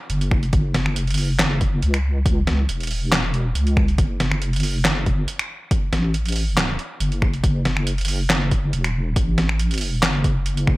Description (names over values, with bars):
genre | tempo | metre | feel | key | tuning
deep dubstep | 139 BPM | 4/4 | half-time | F# minor | A4 = 441 Hz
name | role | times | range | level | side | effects
deep soft wobble bass | bass | 0.1-10.8 s | E1 to C#2 | -21 LUFS | equal | chorus
trip hop sampler-style drum kit | drums | 0.1-10.8 s | finger snaps, handclaps, hi-hat, snare drum | -23 LUFS | equal | studio reverb
electronic kick drum | drums | 0.3-10.8 s | none | -21 LUFS | equal | overdrive, studio reverb
room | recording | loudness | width
digital ambience | none | -18 LUFS | side -20 dB against mid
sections
0.0-10.8 A section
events
none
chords
none